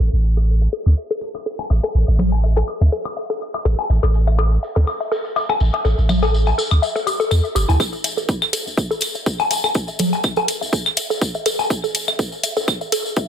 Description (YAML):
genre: minimal techno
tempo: 123 BPM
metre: 4/4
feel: swing 55% on 16ths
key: unclear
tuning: A4 = 440 Hz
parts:
  - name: hollow square pluck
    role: riff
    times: 0.0-13.2 s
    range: E4 to E5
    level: -24 LUFS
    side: left 1 dB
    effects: chorus, phaser, sidechain pumping, dub echo
  - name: punchy sub bass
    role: bass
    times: 0.0-12.6 s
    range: G1 to E2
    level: -15 LUFS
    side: equal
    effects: sidechain pumping, high-pass filter
  - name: claves, woodblock and congas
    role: percussion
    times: 0.0-12.8 s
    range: none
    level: -22 LUFS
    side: left 2 dB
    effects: overdrive, digital delay
  - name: tambourine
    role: percussion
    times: 3.9-13.3 s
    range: none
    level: -28 LUFS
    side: left 1 dB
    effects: none
  - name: electronic kick drum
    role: drums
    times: 7.8-13.3 s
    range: none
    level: -22 LUFS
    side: equal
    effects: high-pass filter on kick
  - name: electronic hi-hat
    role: drums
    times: 8.0-13.0 s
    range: none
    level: -22 LUFS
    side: left 2 dB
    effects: high-pass filter on hats, low-pass filter on hats, high-pass filter on snare, low-pass filter on snare
room: light reverb, digital ambience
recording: dense, heavily limited modern master, low-pass filter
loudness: -17 LUFS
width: side -9 dB against mid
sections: 0.0-7.8 A section; 7.8-13.3 B section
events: filter sweep on synth arpeggio sound 0.0-7.8; filter sweep 0.0-7.8; build-up 7.8-13.3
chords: 0.0 A5